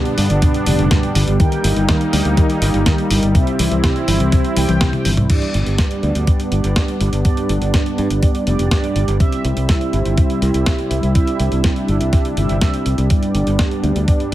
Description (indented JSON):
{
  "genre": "italo disco",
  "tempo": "123 BPM",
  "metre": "4/4",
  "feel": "straight",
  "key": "unclear",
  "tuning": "A4 = 442 Hz",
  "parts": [
    { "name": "warm analog pad", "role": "sustained chords", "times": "0.0-14.3 s", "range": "G3 to E4", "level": "-21 LUFS", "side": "left 1 dB", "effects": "chorus" },
    { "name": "warbly dusty pluck", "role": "arpeggios", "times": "0.0-5.2 s", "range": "B2 to G3", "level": "-23 LUFS", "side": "left 2 dB", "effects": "chorus, cassette tape, tape echo" },
    { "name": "mellow synth brass", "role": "stabs", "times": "0.0-14.3 s", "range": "G2 to G5", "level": "-23 LUFS", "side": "right 3 dB", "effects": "chorus, tape echo" },
    { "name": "clean 12-bit digital drum machine", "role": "drums", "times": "0.1-14.3 s", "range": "crash cymbal, hi-hat, snare drum, toms", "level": "-23 LUFS", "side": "equal", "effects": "none" },
    { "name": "modern bright fingered electric bass", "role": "bass", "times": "0.2-14.3 s", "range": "F1 to G2", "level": "-19 LUFS", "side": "equal", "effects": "none" },
    { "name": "electronic kick drum", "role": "drums", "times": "0.4-14.2 s", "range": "none", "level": "-16 LUFS", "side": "equal", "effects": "none" }
  ],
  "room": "light reverb, digital ambience",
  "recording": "none",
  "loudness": "-14 LUFS",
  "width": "side -14 dB against mid",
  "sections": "0.0-5.3 A section; 5.3-14.3 B section",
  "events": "drum fill 4.6-5.3",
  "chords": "0.0 G; 1.4 Eb/G; 3.3 C; 5.3 G; 9.2 C; 13.1 G"
}